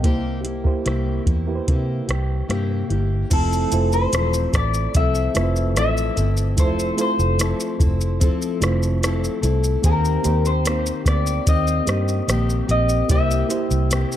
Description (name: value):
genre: indie pop, bedroom pop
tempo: 74 BPM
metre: 4/4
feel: straight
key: F major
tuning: A4 = 437 Hz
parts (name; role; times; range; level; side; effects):
- fingerpicked plugged-in steel-string acoustic guitar; accompaniment; 0.0-14.2 s; C3 to A4; -26 LUFS; left 5 dB; lush chorus, warbly pitch drift
- reed electric piano; accompaniment; 0.0-14.2 s; A3 to G5; -28 LUFS; right 6 dB; cassette tape
- vintage muted fingered electric bass; bass; 0.0-14.0 s; E1 to C3; -21 LUFS; equal; none
- soft vintage rhythm box; drums; 0.0-14.2 s; crash cymbal, hi-hat, kick drum, rim click, shaker; -21 LUFS; equal; none
- electric guitar through a small old amp; melody; 3.3-14.2 s; A4 to E5; -24 LUFS; left 2 dB; wide subtle chorus, ping-pong delay
room: light reverb, digital ambience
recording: dark, warm production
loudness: -18 LUFS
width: side -11 dB against mid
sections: 0.0-3.3 A section; 3.3-14.2 B section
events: none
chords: 0.0 C7; 3.3 Fmaj7; 9.8 Eb6; 13.1 C7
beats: | 0.04 0.86 1.68 2.49 | 3.31 4.13 4.95 5.76 | 6.58 7.39 8.21 9.02 | 9.84 10.65 11.47 12.28 | 13.10 13.91